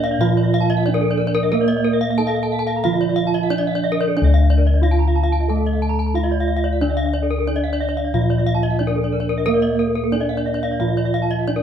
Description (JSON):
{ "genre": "Balinese gamelan", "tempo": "91 BPM", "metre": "4/4", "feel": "straight", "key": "D pelog", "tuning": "A4 = 436 Hz", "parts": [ { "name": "gamelan-type bronze metallophone", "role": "melody", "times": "0.0-11.6 s", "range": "Bb3 to A4", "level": "-23 LUFS", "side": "right 4 dB", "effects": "none" }, { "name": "gamelan-type bronze metallophone", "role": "accompaniment", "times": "0.0-11.6 s", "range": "D3 to Bb3", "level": "-26 LUFS", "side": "right 7 dB", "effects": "none" }, { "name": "gamelan-type bronze metallophone", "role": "arpeggios", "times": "0.0-11.6 s", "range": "Bb4 to A5", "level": "-23 LUFS", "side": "left 5 dB", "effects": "none" }, { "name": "gamelan-type bossed gongs", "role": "bass", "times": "0.0-11.6 s", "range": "D2 to Bb4", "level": "-20 LUFS", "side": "left 1 dB", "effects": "none" }, { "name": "gamelan-type bronze metallophone", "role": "arpeggios", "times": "0.1-11.5 s", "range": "A4 to Bb5", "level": "-28 LUFS", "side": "right 6 dB", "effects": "none" } ], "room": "moderate stone room reverb, RT60 1.1 s", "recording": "band playing live in one room", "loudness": "-16 LUFS", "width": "side -8 dB against mid", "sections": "0.0-11.6 A section", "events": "none", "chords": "none" }